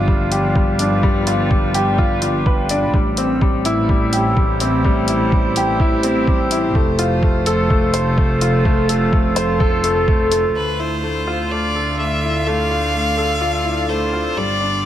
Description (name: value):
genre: piano and strings electronica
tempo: 126 BPM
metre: 4/4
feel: straight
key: unclear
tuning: A4 = 438 Hz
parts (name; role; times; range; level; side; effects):
- warm string quartet; sustained chords; 0.0-14.9 s; D3 to E5; -23 LUFS; right 2 dB; sidechain pumping
- clear upright piano; riff; 0.0-14.9 s; G3 to C5; -19 LUFS; left 1 dB; tape echo
- rich studio double bass section; bass; 0.0-14.9 s; F1 to D2; -22 LUFS; equal; sidechain pumping
- electronic kick drum; drums; 0.1-10.2 s; none; -17 LUFS; equal; none
- electronic hi-hat; drums; 0.3-10.4 s; none; -24 LUFS; left 2 dB; low-pass filter on hats, low-pass filter on room
- bright violin; melody; 10.6-14.9 s; B4 to F5; -22 LUFS; left 2 dB; none
room: light reverb, small room ambience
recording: none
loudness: -15 LUFS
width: side -11 dB against mid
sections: 0.0-10.6 A section; 10.6-14.9 B section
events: none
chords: 0.0 G7; 2.9 Am7; 6.8 F; 10.6 Dmadd9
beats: 0.08 0.56 | 1.04 1.51 1.99 2.46 | 2.94 3.42 3.89 4.37 | 4.85 5.32 5.80 6.28 | 6.75 7.23 7.70 8.18 | 8.66 9.13 9.61 10.08 | 10.56 11.04 11.51 11.99 | 12.46 12.94 13.42 13.89 | 14.37 14.85